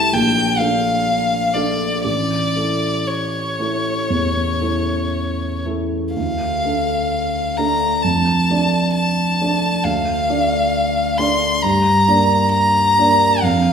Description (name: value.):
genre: classical, romantic duo for violin and grand piano.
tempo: 56-68 BPM.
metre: 4/4.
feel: rubato.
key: D minor.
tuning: A4 = 441 Hz.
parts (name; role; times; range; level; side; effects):
clear violin; melody; 0.0-13.7 s; C#5 to C6; -18 LUFS; left 1 dB; none.
warm concert grand piano; accompaniment; 0.0-13.7 s; A1 to D5; -19 LUFS; right 1 dB; none.
room: wet recital hall reverb, RT60 1.6 s.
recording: heard from further back in the room.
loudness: -15 LUFS.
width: side -7 dB against mid.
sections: 0.0-13.7 A section.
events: none.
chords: 0.1 Bbmaj7; 2.0 A; 6.2 Dm; 8.0 Dm/F; 9.9 Dm; 11.6 Gm.